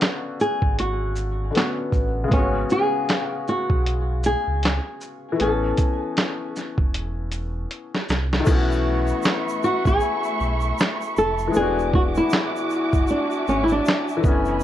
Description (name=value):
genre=lo-fi hip hop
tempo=78 BPM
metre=4/4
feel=swing 59% on 16ths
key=unclear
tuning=A4 = 439 Hz
part: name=felt-muted upright piano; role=accompaniment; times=0.0-14.6 s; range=C#3 to G#5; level=-27 LUFS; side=left 4 dB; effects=low-pass filter
part: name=lo-fi sampler-style drum kit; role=drums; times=0.0-14.4 s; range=crash cymbal, handclaps, hi-hat, kick drum, shaker, snare drum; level=-22 LUFS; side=right 1 dB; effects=none
part: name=flamenco guitar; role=melody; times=0.4-14.2 s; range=B3 to A4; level=-23 LUFS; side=equal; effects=low-pass filter, tape echo
part: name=sub bass with octave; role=bass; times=0.6-14.6 s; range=E1 to C#2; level=-26 LUFS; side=right 1 dB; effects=none
part: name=warm studio string section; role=sustained chords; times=8.5-14.6 s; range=A3 to D6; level=-28 LUFS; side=equal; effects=low-pass filter
part: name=egg shaker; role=percussion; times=8.5-14.6 s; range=none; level=-46 LUFS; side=right 7 dB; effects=none
room=light reverb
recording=cassette tape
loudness=-20 LUFS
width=side -12 dB against mid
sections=0.0-8.5 A section; 8.5-14.6 B section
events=drum fill 7.7-8.5; hi-hats muted 8.5-14.6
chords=0.0 Bm9; 2.3 F#sus24/G#; 5.4 Amaj7; 8.5 B9sus4; 11.5 E9